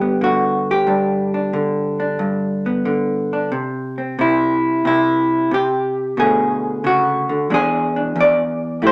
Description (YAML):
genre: solo jazz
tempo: 90 BPM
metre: 4/4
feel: swing 69% on 8ths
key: G major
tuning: A4 = 440 Hz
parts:
  - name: vintage hollow-body jazz guitar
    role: solo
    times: 0.0-8.9 s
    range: E2 to D5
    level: -18 LUFS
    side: equal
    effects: none
room: moderate studio reverb, RT60 0.8 s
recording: none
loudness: -18 LUFS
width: mono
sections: 0.0-3.5 A section; 3.5-8.9 B section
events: none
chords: 0.0 G; 3.5 N.C.; 6.2 Bm7; 7.5 E7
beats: 0.19 | 0.86 1.52 2.19 2.85 | 3.51 4.18 4.84 5.51 | 6.17 6.83 7.50 8.16 | 8.82